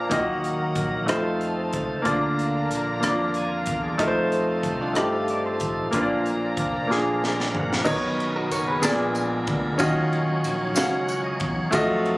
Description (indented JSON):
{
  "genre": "slow gospel",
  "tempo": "62 BPM (dotted quarters)",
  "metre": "6/8",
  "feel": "straight",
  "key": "Eb harmonic minor",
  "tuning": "A4 = 439 Hz",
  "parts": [
    { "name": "direct-recorded clean electric guitar", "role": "second line", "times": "0.0-0.1, 4.8-9.0 s", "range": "D4 to D5", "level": "-30 LUFS", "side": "right 1 dB", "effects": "slapback echo" },
    { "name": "clear concert grand piano", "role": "accompaniment", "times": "0.0-12.2 s", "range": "Bb2 to Gb5", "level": "-24 LUFS", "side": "equal", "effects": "none" },
    { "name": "tonewheel organ", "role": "sustained chords", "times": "0.0-12.2 s", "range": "D#3 to Ab5", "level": "-30 LUFS", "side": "right 1 dB", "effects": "fast rotary speaker, overdrive" },
    { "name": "warm studio string section", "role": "sustained chords", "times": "0.0-7.9 s", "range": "F4 to Bb5", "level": "-35 LUFS", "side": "equal", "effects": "none" },
    { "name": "fingered electric bass", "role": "bass", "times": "0.1-12.2 s", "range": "F1 to G2", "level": "-31 LUFS", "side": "equal", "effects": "none" },
    { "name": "crisp fusion drum kit", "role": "drums", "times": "0.1-12.2 s", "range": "crash cymbal, hi-hat, kick drum, ride cymbal, rim click, snare drum, toms", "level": "-31 LUFS", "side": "equal", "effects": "none" },
    { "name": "tambourine", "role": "percussion", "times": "7.9-12.0 s", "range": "none", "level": "-33 LUFS", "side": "equal", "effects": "none" }
  ],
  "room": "light reverb, small room ambience",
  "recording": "recorded on a phone in the room, club reverb, compression",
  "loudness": "-21 LUFS",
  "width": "side -21 dB against mid",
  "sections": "0.0-7.9 A section; 7.9-12.2 B section",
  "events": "drum fill 6.9-7.9; tonewheel organ fill 6.9-7.9, 10.8-11.7",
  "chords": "0.1 Ebm; 1.1 F7; 2.1 Bb; 4.0 F7; 5.9 Bb; 7.9 Bmaj9; 8.8 Bb7b9; 9.8 Ebm9"
}